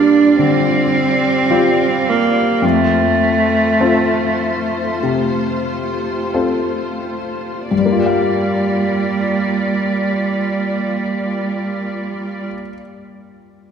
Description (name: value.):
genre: neoclassical piano and strings.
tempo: 43-55 BPM.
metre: 4/4.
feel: rubato.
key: G minor.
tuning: A4 = 439 Hz.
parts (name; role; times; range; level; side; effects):
rich cello; second line; 0.0-12.5 s; G3 to D4; -16 LUFS; right 3 dB; none.
clear concert grand piano; accompaniment; 0.0-13.7 s; F2 to F5; -19 LUFS; left 4 dB; none.
rich studio string section; sustained chords; 0.0-12.5 s; G3 to D5; -24 LUFS; equal; none.
room: wet church reverb, RT60 2.9 s.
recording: recorded in a church or concert hall.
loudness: -14 LUFS.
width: side -7 dB against mid.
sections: 0.0-7.7 A section; 7.7-13.1 B section.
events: slowing down 0.0-7.7.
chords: 0.0 Gm7; 2.6 F; 7.7 Gm7.